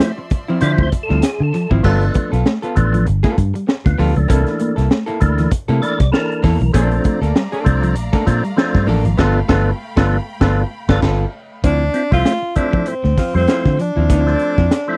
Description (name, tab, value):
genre	funk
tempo	98 BPM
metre	4/4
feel	swing 56% on 16ths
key	D dorian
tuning	A4 = 440 Hz
part	vintage hollow-body jazz guitar	accompaniment	0.0-14.8 s	F3 to A4	-25 LUFS	equal	none
part	clear studio string section	sustained chords	0.0-1.8, 6.7-11.6 s	F3 to C6	-35 LUFS	equal	none
part	electric guitar at the edge of break-up	riff	0.0-14.1 s	E3 to D4	-24 LUFS	equal	none
part	percussive tonewheel organ	stabs	0.0-15.0 s	E3 to D5	-23 LUFS	equal	chorus vibrato, fast rotary speaker
part	crunchy breakbeat drum kit	drums	0.0-14.9 s	crash cymbal, hi-hat, kick drum, snare drum	-19 LUFS	equal	none
part	vintage muted fingered electric bass	bass	0.6-14.7 s	G1 to D3	-19 LUFS	equal	none
part	breathy tenor saxophone	melody	11.6-15.0 s	C4 to F4	-22 LUFS	equal	none
room	little or no reverb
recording	dry, close 1970s-style studio recording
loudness	-16 LUFS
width	mono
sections	0.0-1.8 A section; 1.8-11.6 B section; 11.6-15.0 C section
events	tonewheel organ solo 0.0-1.8; tonewheel organ fill 5.5-6.7; band accent 9.2-11.6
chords	0.0 Dm9; 1.8 G9; 4.3 C13; 6.7 Bbmaj7; 9.2 G9; 11.6 Dm9